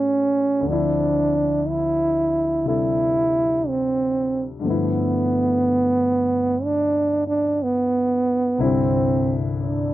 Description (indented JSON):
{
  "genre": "jazz",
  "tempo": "61 BPM",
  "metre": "4/4",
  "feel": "swing 66% on 8ths",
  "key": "unclear",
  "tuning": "A4 = 440 Hz",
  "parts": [
    { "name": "mellow trombone", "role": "melody", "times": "0.0-9.9 s", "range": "B3 to E4", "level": "-19 LUFS", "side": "right 2 dB", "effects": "none" },
    { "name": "warm grand piano", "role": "accompaniment", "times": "0.0-9.9 s", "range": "C2 to A4", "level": "-25 LUFS", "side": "left 4 dB", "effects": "none" }
  ],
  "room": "moderate booth ambience, RT60 0.2 s",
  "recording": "dry, close 1970s-style studio recording",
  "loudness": "-18 LUFS",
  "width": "side -14 dB against mid",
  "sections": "0.0-9.9 A section",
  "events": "none",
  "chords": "0.0 A7; 0.6 Dm9; 4.6 G13; 8.6 Cadd9"
}